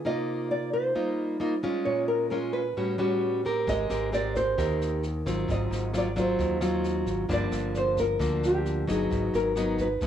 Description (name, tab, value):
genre	bossa nova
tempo	132 BPM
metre	4/4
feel	straight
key	unclear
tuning	A4 = 441 Hz
part	nylon-string guitar	accompaniment	0.0-10.1 s	G2 to Bb4	-28 LUFS	equal	cassette tape, plate reverb
part	nylon-string guitar	melody	0.1-10.1 s	G4 to Eb5	-29 LUFS	equal	cassette tape, plate reverb
part	modern bright fingered electric bass	bass	3.7-10.1 s	G1 to Eb2	-32 LUFS	equal	none
part	jazz brush drum kit	drums	3.7-10.1 s	kick drum, rim click, snare drum	-37 LUFS	equal	cassette tape
room	moderate small room reverb, RT60 0.6 s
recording	home recording on cassette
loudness	-25 LUFS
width	side -9 dB against mid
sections	0.0-10.1 A section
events	none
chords	0.0 Cm7; 1.9 Bbm7; 2.8 A13; 3.7 Abmaj9; 5.5 Ab6; 7.3 Gm7; 9.1 Abm7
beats	| 0.05 0.50 0.95 1.41 | 1.86 2.31 2.77 3.22 | 3.67 4.13 4.58 5.03 | 5.49 5.94 6.39 6.84 | 7.30 7.75 8.20 8.65 | 9.11 9.56 10.01